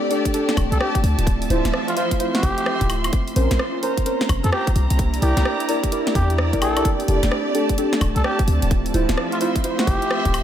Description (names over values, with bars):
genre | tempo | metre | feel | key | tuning
UK garage, two-step garage | 129 BPM | 4/4 | swing 64% on 16ths | unclear | A4 = 437 Hz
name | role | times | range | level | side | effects
airy breathy pad | sustained chords | 0.0-10.4 s | A3 to G4 | -28 LUFS | right 2 dB | chorus, sidechain pumping
rich studio string section | texture | 0.0-10.4 s | F3 to C6 | -28 LUFS | equal | sidechain pumping
deep mellow chord stab | stabs | 0.1-9.8 s | Db4 to G5 | -25 LUFS | equal | chorus, diffuse ambient delay
garage drum kit | drums | 0.1-10.4 s | hi-hat, rim click, snare drum, woodblock | -26 LUFS | equal | small room ambience
electronic kick drum | drums | 0.3-10.3 s | none | -22 LUFS | equal | small room ambience
short 808-style bass | bass | 0.6-10.4 s | D1 to F2 | -20 LUFS | equal | none
trumpet with cup mute | melody | 0.7-10.4 s | F4 to A4 | -27 LUFS | equal | diffuse ambient delay
room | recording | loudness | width
moderate lush hall reverb, RT60 1.6 s | dreamy mix soaked in reverb | -18 LUFS | side -10 dB against mid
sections
0.0-10.4 A section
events
none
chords
0.0 Dm9; 3.1 Bbmadd9; 4.8 C9; 6.8 Dm9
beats
0.34 0.80 | 1.27 1.73 2.20 2.66 | 3.13 3.59 4.06 4.52 | 4.99 5.46 5.92 6.38 | 6.85 7.32 7.78 8.24 | 8.71 9.18 9.64 10.11